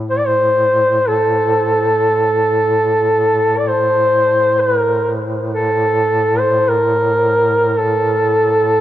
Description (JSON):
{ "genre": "caucasian folk, Caucasian lament", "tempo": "free time", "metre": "none", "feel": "none", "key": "A phrygian", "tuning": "A4 = 440 Hz", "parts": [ { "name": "warm duduk", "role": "drone", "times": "0.0-8.8 s", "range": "A2", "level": "-22 LUFS", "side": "equal", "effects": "none" }, { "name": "mellow duduk", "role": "melody", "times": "0.1-8.8 s", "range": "A4 to D5", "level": "-13 LUFS", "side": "equal", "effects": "none" } ], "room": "moderate cathedral reverb, RT60 5.2 s", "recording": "dark, warm production", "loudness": "-12 LUFS", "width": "side -12 dB against mid", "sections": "0.0-8.8 A section", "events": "none", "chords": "none", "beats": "free time" }